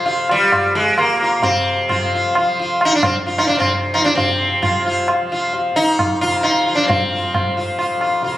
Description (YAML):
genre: indian classical, Hindustani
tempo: 132 BPM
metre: 3/4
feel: straight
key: unclear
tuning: A4 = 441 Hz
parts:
  - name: sitar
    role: melody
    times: 0.0-8.4 s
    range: G3 to F4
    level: -16 LUFS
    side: equal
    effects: none
  - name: tanpura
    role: drone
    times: 0.0-8.4 s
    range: F2 to F3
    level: -26 LUFS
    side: equal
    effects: none
  - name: tabla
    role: percussion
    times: 0.1-8.4 s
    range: none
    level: -20 LUFS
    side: equal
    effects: none
room: moderate concert hall reverb, RT60 2.2 s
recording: recorded on a phone in the room, studio ambience, compression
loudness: -14 LUFS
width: side -14 dB against mid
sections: 0.0-4.2 A section; 4.2-8.4 B section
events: speeding up 0.0-8.4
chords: none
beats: | 0.06 0.52 0.98 | 1.44 1.90 2.36 | 2.82 3.27 3.73 | 4.18 4.64 5.09 | 5.54 6.00 6.45 | 6.90 7.35 7.79 | 8.24